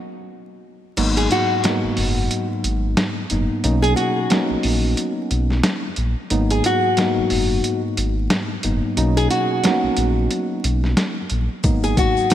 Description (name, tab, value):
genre	hip hop, boom-bap hip-hop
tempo	90 BPM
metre	4/4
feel	swing 58% on 16ths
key	G# minor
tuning	A4 = 440 Hz
part	tine electric piano	accompaniment	1.0-12.3 s	G#2 to D#4	-22 LUFS	equal	overdrive, fast stereo tremolo, cassette tape
part	sub bass with octave	bass	1.0-11.9 s	F#1 to B1	-21 LUFS	equal	none
part	boom bap sampler-style drum kit	drums	1.0-12.3 s	crash cymbal, hi-hat, kick drum, snare drum	-23 LUFS	equal	none
part	nylon-string guitar	melody	1.2-12.3 s	F#4 to G#4	-22 LUFS	left 1 dB	wide subtle chorus, ping-pong delay
part	tube shaker	percussion	11.6-12.3 s	none	-36 LUFS	left 13 dB	none
room	moderate lush hall reverb, RT60 2.8 s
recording	dreamy mix soaked in reverb, vinyl crackle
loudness	-17 LUFS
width	side -11 dB against mid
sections	1.0-12.3 A section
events	break 0.0-1.0; kick muted 1.0-11.6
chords	0.0 N.C.; 1.0 G#m7; 3.6 Bmaj9; 6.3 G#m7; 9.0 Bmaj9; 11.6 G#m7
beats	0.31 | 0.98 1.64 2.31 2.98 | 3.64 4.31 4.98 5.64 | 6.31 6.98 7.64 8.31 | 8.98 9.64 10.31 10.98 | 11.64 12.31